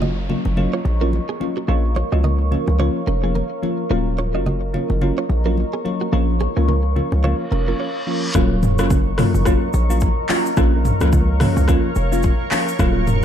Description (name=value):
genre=afrobeats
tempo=108 BPM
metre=4/4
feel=swing 58% on 16ths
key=Eb minor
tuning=A4 = 437 Hz
part: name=bell-like FM electric piano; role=accompaniment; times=0.0-13.2 s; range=F3 to F4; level=-22 LUFS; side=left 1 dB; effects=chorus, phaser
part: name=deep dark ambient pad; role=sustained chords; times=0.0-13.2 s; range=Bb4 to Db6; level=-26 LUFS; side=equal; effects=chorus, built-in reverb
part: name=direct-recorded clean electric guitar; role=riff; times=0.0-8.0 s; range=Bb3 to Eb5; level=-29 LUFS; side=right 7 dB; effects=wide subtle chorus, ping-pong delay
part: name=hard-hitting 808-style bass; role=bass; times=0.0-13.2 s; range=Eb1 to Db2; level=-19 LUFS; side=equal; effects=none
part: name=congas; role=percussion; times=0.0-13.2 s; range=none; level=-28 LUFS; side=equal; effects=none
part: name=downlifter and reverse cymbal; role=sound effects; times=0.0-3.9, 7.5-8.3 s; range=none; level=-33 LUFS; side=equal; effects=none
part: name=deep house drum kit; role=drums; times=8.3-13.2 s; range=handclaps, hi-hat, kick drum, rim click, shaker, toms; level=-19 LUFS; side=equal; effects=overdrive
room=digital ambience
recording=dark, warm production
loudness=-16 LUFS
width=side -9 dB against mid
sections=0.0-8.3 A section; 8.3-13.2 B section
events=reverse cymbal 7.5-8.3; break 7.8-8.3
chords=0.0 Ebm7; 1.7 Bbm; 3.9 Ebm7; 6.1 Bbm; 8.3 Ebm7; 10.6 Bbm